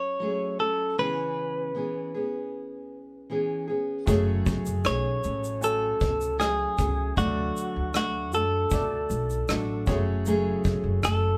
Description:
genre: acoustic pop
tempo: 78 BPM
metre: 4/4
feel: straight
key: F# minor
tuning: A4 = 438 Hz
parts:
  - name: direct-recorded clean electric guitar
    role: melody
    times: 0.0-11.4 s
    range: F#4 to C#5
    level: -30 LUFS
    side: equal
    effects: none
  - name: fingerpicked steel-string acoustic guitar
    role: accompaniment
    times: 0.0-11.4 s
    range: F#2 to G#4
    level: -32 LUFS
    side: equal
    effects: none
  - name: bright upright piano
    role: accompaniment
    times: 4.1-11.4 s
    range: G#3 to G#5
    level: -40 LUFS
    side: equal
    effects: none
  - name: upright bass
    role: bass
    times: 4.1-11.4 s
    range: F#1 to F#2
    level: -32 LUFS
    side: equal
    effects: none
  - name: vintage brush drum kit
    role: drums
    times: 4.1-11.2 s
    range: kick drum, rim click, shaker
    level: -32 LUFS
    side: equal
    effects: none
room: moderate studio reverb, RT60 0.5 s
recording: band playing live in one room, faint mains hum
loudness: -27 LUFS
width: mono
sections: 0.0-11.4 A section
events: none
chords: 0.0 F#madd9; 1.0 C#m7; 4.1 F#madd9; 7.2 D; 9.9 F#madd9

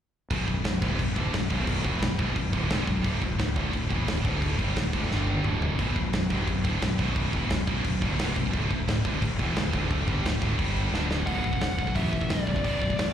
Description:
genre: heavy metal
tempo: 175 BPM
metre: 4/4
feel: straight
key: B phrygian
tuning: A4 = 437 Hz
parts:
  - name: heavy high-gain guitar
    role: riff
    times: 0.3-13.1 s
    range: B1 to G3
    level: -32 LUFS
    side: right 11 dB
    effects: distortion, slapback echo
  - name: scooped high-gain guitar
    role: riff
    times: 0.3-13.1 s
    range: B1 to G3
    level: -32 LUFS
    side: left 8 dB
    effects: distortion, slapback echo
  - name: fuzz fingered electric bass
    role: bass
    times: 0.3-13.1 s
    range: B0 to A1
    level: -29 LUFS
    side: equal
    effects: overdrive
  - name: big rock drum kit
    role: drums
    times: 0.3-13.1 s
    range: crash cymbal, hi-hat, kick drum, snare drum, toms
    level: -29 LUFS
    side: equal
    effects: none
  - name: high-gain lead guitar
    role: melody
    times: 11.3-13.1 s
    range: D5 to F#5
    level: -31 LUFS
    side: left 1 dB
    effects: distortion, slapback echo
room: little or no reverb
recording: live gig heard through the venue's PA, recital hall reverb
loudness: -24 LUFS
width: side -9 dB against mid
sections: 0.3-11.3 A section; 11.3-13.1 B section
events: drum fill 5.1-5.8, 10.9-11.3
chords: 0.3 Bm; 3.1 D5; 5.1 G5; 5.5 D5; 5.8 Bm; 8.5 D5; 10.6 G5; 10.9 D5; 11.3 Bm

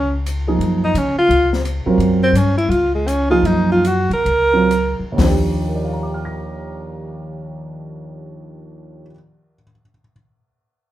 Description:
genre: modal jazz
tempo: 120-172 BPM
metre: 4/4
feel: swing 64% on 8ths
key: Eb major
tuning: A4 = 443 Hz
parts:
  - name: mellow tenor saxophone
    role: melody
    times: 0.0-5.1 s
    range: Ab3 to Bb4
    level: -16 LUFS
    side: equal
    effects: none
  - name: upright bass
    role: bass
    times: 0.0-9.0 s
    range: Db2 to Db3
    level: -20 LUFS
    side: left 1 dB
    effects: none
  - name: open jazz drum kit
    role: drums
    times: 0.3-5.3 s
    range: hi-hat, kick drum, ride cymbal, snare drum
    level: -26 LUFS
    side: left 2 dB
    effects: none
  - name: dark upright piano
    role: accompaniment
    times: 0.5-10.1 s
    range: Eb2 to Bb6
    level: -21 LUFS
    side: right 3 dB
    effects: none
room: wet club reverb, RT60 0.7 s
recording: heard from further back in the room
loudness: -14 LUFS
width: side -13 dB against mid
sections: 0.0-5.2 A section; 5.2-9.2 B section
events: tenor saxophone solo 0.0-5.2; slowing down 2.0-5.2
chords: 0.0 Gbmaj9; 5.2 Ebmaj9

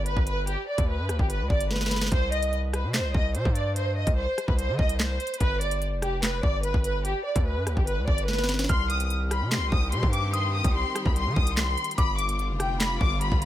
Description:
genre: hip hop, drill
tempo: 146 BPM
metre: 4/4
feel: half-time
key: C harmonic minor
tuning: A4 = 440 Hz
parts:
  - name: warm studio violin section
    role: melody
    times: 0.0-13.5 s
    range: G4 to Eb6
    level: -29 LUFS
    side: equal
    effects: digital delay
  - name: distorted 808-style bass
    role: bass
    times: 0.0-13.5 s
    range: F1 to Eb3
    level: -28 LUFS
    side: equal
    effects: distortion
  - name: drill drum kit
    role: drums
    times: 0.1-13.5 s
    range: handclaps, hi-hat, kick drum, rim click, snare drum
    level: -26 LUFS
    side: equal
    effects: none
  - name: glassy synth bell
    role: second line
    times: 8.7-12.8 s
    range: D6 to F6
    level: -35 LUFS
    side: left 1 dB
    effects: chorus, tremolo, digital delay
  - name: clear studio string section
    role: sustained chords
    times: 8.7-13.5 s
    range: D3 to G4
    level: -35 LUFS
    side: left 1 dB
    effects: none
room: little or no reverb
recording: none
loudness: -23 LUFS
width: side -13 dB against mid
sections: 0.0-8.7 A section; 8.7-13.5 B section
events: drum fill 1.7-2.1, 8.3-8.7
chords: 0.0 G; 2.1 Cm; 5.4 G7; 8.7 Cm; 12.0 G7

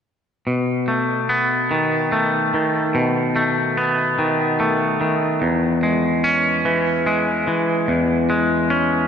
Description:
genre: rock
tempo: 49 BPM (dotted quarters)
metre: 6/8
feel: straight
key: unclear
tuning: A4 = 445 Hz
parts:
  - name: twangy electric guitar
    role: arpeggios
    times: 0.5-9.1 s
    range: E2 to C#4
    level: -17 LUFS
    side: equal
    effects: tape echo, slapback echo
room: wet lush hall reverb, RT60 2.8 s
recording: big arena sound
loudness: -17 LUFS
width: side -7 dB against mid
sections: 0.5-9.1 A section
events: none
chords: 0.5 B7; 5.4 E6

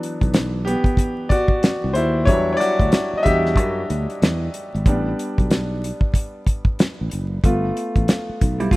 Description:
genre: R&B, neo-soul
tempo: 93 BPM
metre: 4/4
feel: swing 61% on 16ths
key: unclear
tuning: A4 = 442 Hz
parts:
  - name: clear grand piano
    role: accompaniment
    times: 0.0-8.8 s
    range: E3 to E5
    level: -22 LUFS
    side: left 1 dB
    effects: none
  - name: damped 70s drum kit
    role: drums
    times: 0.0-8.8 s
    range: hi-hat, kick drum, snare drum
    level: -18 LUFS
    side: equal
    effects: none
  - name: sustaining fretless electric bass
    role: bass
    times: 0.2-8.8 s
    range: F#1 to F#2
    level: -23 LUFS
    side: equal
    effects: analog chorus
  - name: vintage hollow-body jazz guitar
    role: second line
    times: 8.6-8.8 s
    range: G3 to F4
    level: -20 LUFS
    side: right 3 dB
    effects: none
room: little or no reverb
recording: rough home demo mix, vinyl crackle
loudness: -17 LUFS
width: side -20 dB against mid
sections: 0.0-8.8 A section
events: grand piano solo 0.0-8.8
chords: 0.0 Cmaj9#11; 2.3 Em9; 4.8 A9sus4; 7.4 G7

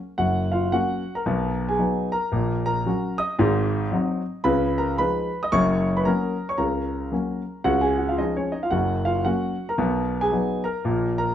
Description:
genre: jazz, stride piano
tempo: 113 BPM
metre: 4/4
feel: swing 63% on 8ths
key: F# major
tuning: A4 = 439 Hz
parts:
  - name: clear concert grand piano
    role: solo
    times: 0.2-11.3 s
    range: F#1 to D#6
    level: -21 LUFS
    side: equal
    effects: none
room: wet studio reverb, RT60 0.7 s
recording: heard from further back in the room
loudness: -21 LUFS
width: side -10 dB against mid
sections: 0.2-11.3 A section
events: none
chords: 0.2 F#; 1.2 Bmaj7; 2.3 F#/A#; 3.4 G#7; 4.4 C#9; 5.5 F#; 6.6 F#/C#; 7.6 C#; 8.7 F#; 9.8 Bmaj7; 10.8 N.C.

